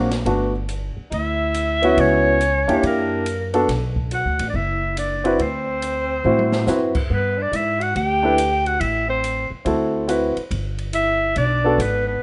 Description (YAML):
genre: jazz, small-group swing and bop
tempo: 140 BPM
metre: 4/4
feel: swing 65% on 8ths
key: G major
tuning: A4 = 440 Hz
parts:
  - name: warm concert grand piano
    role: accompaniment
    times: 0.0-11.8 s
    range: A3 to C5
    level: -22 LUFS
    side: equal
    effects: none
  - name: upright bass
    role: bass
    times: 0.0-12.2 s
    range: F#1 to A2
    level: -27 LUFS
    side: equal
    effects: none
  - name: open jazz drum kit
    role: drums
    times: 0.1-11.9 s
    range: crash cymbal, hi-hat, kick drum, ride cymbal, snare drum, toms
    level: -34 LUFS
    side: equal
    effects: none
  - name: bright clarinet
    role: melody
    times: 1.1-12.2 s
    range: A#4 to G5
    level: -24 LUFS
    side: equal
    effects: none
  - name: growling alto saxophone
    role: second line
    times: 1.1-12.2 s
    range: A#3 to G4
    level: -31 LUFS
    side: equal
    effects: none
room: light reverb, small room reverb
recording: rough home demo mix, nothing above 10.7 kHz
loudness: -20 LUFS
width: mono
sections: 0.3-12.2 A section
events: drum fill 6.2-6.7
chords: 0.3 Gmaj9; 2.0 C#m7b5; 2.8 F#7alt; 3.7 Bm; 5.4 D13; 7.1 G6; 8.8 Am; 9.7 D9; 10.5 G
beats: | 0.25 0.68 1.11 1.54 | 1.97 2.39 2.82 3.25 | 3.68 4.10 4.53 4.96 | 5.39 5.81 6.24 6.67 | 7.09 7.52 7.95 8.38 | 8.80 9.23 9.66 10.08 | 10.51 10.94 11.36 11.79 | 12.22